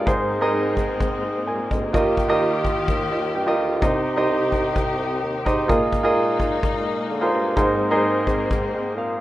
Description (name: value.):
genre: piano-driven pop.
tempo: 128 BPM.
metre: 4/4.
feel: straight.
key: unclear.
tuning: A4 = 436 Hz.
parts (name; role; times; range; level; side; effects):
clear grand piano; accompaniment; 0.0-9.2 s; Ab2 to Ab5; -21 LUFS; right 1 dB; none.
warm studio string section; sustained chords; 0.0-9.2 s; C3 to G4; -28 LUFS; left 3 dB; none.
dark bassoon; bass; 0.0-9.2 s; C2 to D3; -28 LUFS; equal; none.
kick drum; drums; 0.1-8.6 s; none; -26 LUFS; left 1 dB; none.
room: light reverb.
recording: rough home demo mix.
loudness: -19 LUFS.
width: side -15 dB against mid.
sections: 0.0-9.2 A section.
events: grand piano fill 2.9-3.8.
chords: 0.1 Abadd9; 1.9 Ebadd9; 3.8 Cm; 5.7 Bb7sus4; 7.6 Abadd9.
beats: | 0.07 0.54 1.01 1.48 | 1.95 2.41 2.88 3.35 | 3.82 4.29 4.76 5.23 | 5.70 6.17 6.63 7.10 | 7.57 8.04 8.51 8.98.